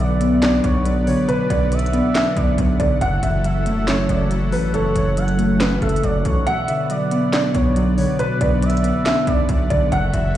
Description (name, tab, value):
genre	hip hop, trap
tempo	139 BPM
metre	4/4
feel	half-time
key	B minor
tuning	A4 = 440 Hz
part	dark concert grand piano	melody	0.0-10.4 s	A4 to F#5	-24 LUFS	right 1 dB	low-pass filter, tape echo
part	gliding portamento lead	second line	0.0-10.4 s	B4 to F#5	-28 LUFS	right 4 dB	chorus, tape echo
part	warbly lo-fi synth keys	accompaniment	0.0-10.4 s	F#2 to D4	-20 LUFS	left 1 dB	chorus, low-pass filter
part	warm analog pad	sustained chords	0.0-10.4 s	F#3 to F#5	-29 LUFS	right 2 dB	chorus, tremolo
part	distorted 808-style bass	bass	0.0-10.4 s	E1 to B1	-20 LUFS	equal	distortion
part	trap drum kit	drums	0.2-10.2 s	handclaps, hi-hat, snare drum	-26 LUFS	equal	vintage 12-bit sampler grit
room	light reverb, digital ambience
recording	played on a big sound system in a bare room, large studio reverb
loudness	-16 LUFS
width	side -12 dB against mid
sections	0.0-10.4 A section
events	kick muted 6.5-7.3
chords	0.0 Bm; 3.0 F#m7; 6.5 Bm